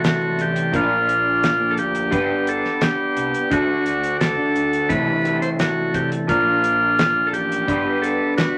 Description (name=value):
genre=psychedelic rock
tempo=86 BPM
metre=4/4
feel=straight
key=unclear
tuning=A4 = 437 Hz
part: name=combo organ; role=melody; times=0.0-8.6 s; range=F4 to C5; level=-22 LUFS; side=equal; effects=none
part: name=mellow tonewheel organ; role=sustained chords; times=0.0-8.6 s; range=A4 to D6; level=-34 LUFS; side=equal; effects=slow rotary speaker
part: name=electric guitar through a small old amp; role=riff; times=0.0-8.6 s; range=Bb2 to B4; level=-25 LUFS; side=equal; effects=rotary speaker
part: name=damped 70s drum kit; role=drums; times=0.0-8.5 s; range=hi-hat, kick drum, snare drum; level=-26 LUFS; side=equal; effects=none
part: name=fuzz picked electric bass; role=bass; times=0.4-8.2 s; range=G1 to D3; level=-34 LUFS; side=equal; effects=overdrive
room=wet club reverb, RT60 0.5 s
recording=vinyl crackle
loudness=-20 LUFS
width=mono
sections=0.0-8.6 A section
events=none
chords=0.0 C6; 0.7 Bb; 2.1 G; 3.5 D; 4.9 C6; 6.3 Bb; 7.7 G